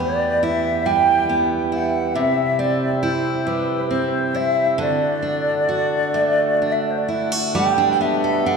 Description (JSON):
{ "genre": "celtic folk, Celtic slow air", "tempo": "43-47 BPM (dotted quarters)", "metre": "6/8", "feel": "rubato", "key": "D mixolydian", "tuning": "A4 = 440 Hz", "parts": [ { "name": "breathy mellow wooden flute", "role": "melody", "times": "0.0-8.6 s", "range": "B4 to G5", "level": "-20 LUFS", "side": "equal", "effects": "none" }, { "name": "picked steel-string acoustic guitar", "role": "accompaniment", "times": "0.0-8.6 s", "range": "E2 to A4", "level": "-22 LUFS", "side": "right 3 dB", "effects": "none" }, { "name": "mellow accordion", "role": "sustained chords", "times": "0.0-8.6 s", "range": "B2 to G4", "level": "-28 LUFS", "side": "left 4 dB", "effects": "none" } ], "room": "wet church reverb, RT60 2.9 s", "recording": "recorded in a church or concert hall", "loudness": "-17 LUFS", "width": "side -5 dB against mid", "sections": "0.0-7.6 A section; 7.6-8.6 B section", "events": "none", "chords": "0.0 Em; 2.2 C; 4.8 D; 7.6 Gadd9" }